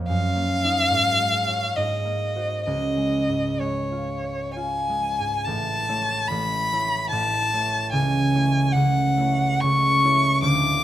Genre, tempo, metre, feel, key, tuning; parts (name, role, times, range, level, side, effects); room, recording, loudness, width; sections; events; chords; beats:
classical, romantic duo for violin and harp; 60-75 BPM; 3/4; rubato; Db major, A major from 5.5 s; A4 = 439 Hz
concert harp; accompaniment; 0.0-10.8 s; D1 to Eb5; -24 LUFS; right 1 dB
rich violin; melody; 0.1-10.8 s; Db5 to D6; -22 LUFS; left 2 dB
moderate recital hall reverb, RT60 1.5 s; close, detailed microphones; -20 LUFS; side -12 dB against mid
0.0-5.5 A section; 5.5-10.8 B section
0.1 Ebm/Gb; 0.9 Db/Ab; 1.7 Ab9; 2.6 Db; 5.5 A; 7.9 A/C#
| 0.07 0.90 1.74 | 2.64 3.58 4.55 | 5.45 6.27 7.10 | 7.92 8.74 9.61 | 10.43